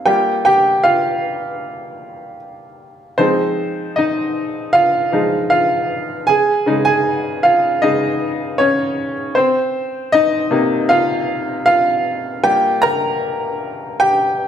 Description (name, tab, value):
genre	pop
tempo	78 BPM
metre	4/4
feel	straight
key	F minor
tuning	A4 = 438 Hz
part	bright upright piano	solo	0.0-14.5 s	C3 to Bb5	-14 LUFS	equal	none
room	wet recital hall reverb, RT60 1.4 s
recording	none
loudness	-14 LUFS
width	side -9 dB against mid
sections	0.0-3.2 A section; 3.2-14.5 B section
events	upright piano solo 0.0-3.2, 3.2-14.5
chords	0.1 Gm7; 3.2 Fm7; 6.3 Dbsus2; 9.4 Cm7; 12.4 Gm7